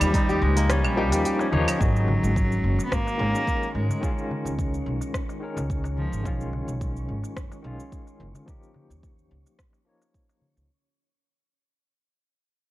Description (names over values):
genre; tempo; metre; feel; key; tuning
organic downtempo; 108 BPM; 4/4; swing 54% on 16ths; unclear; A4 = 441 Hz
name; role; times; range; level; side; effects
rich cello; melody; 0.0-6.2 s; E#3 to B3; -29 LUFS; equal; analog delay
barky tine electric piano; accompaniment; 0.0-10.7 s; D#3 to C#5; -31 LUFS; left 3 dB; overdrive, medium tremolo, sidechain pumping, low-pass filter, tape echo
kora; arpeggios; 0.0-3.3 s; G3 to G4; -29 LUFS; equal; tape echo
upright bass; bass; 0.0-10.7 s; F#1 to G#2; -26 LUFS; equal; tube saturation, sidechain pumping
organic electronic drum kit; drums; 0.0-10.7 s; cabasa, claves, hi-hat, rim click; -32 LUFS; right 1 dB; overdrive, studio reverb
wind-like tuned noise texture; texture; 0.0-10.7 s; C#4 to D#5; -39 LUFS; right 2 dB; none
electronic kick drum; drums; 0.1-10.3 s; none; -28 LUFS; equal; studio reverb
darbuka; percussion; 0.1-10.5 s; none; -35 LUFS; left 1 dB; none
room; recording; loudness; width
small room ambience; dry, gritty hardware recording, transformer saturation, cassette tape; -22 LUFS; side -16 dB against mid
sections
0.0-1.8 A section; 1.8-10.7 B section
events
kick drops out 0.7-1.8; fade-out 1.8-10.7; filter sweep on tine electric piano 1.8-10.7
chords
0.0 D#7; 1.8 G#5; 4.0 C#; 6.3 B6; 8.5 D#7